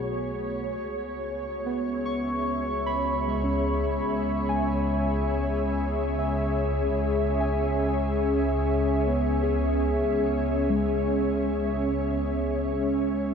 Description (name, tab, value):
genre	ambient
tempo	74 BPM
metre	4/4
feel	straight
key	unclear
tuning	A4 = 438 Hz
part	ethereal airy pad	sustained chords	0.0-13.3 s	B3 to E5	-27 LUFS	equal	ensemble chorus, built-in reverb, shimmer reverb
part	muted felt-like synth keys	arpeggios	0.0-13.3 s	G#3 to C#6	-29 LUFS	equal	chorus, ping-pong delay, shimmer reverb
part	clear symphonic double bass section	bass	0.0-13.3 s	B1 to C#2	-30 LUFS	equal	none
room	wet huge ambient reverb, RT60 8.4 s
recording	dark, warm production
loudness	-24 LUFS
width	side -6 dB against mid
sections	0.0-13.3 A section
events	none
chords	0.0 B5; 0.8 C#m7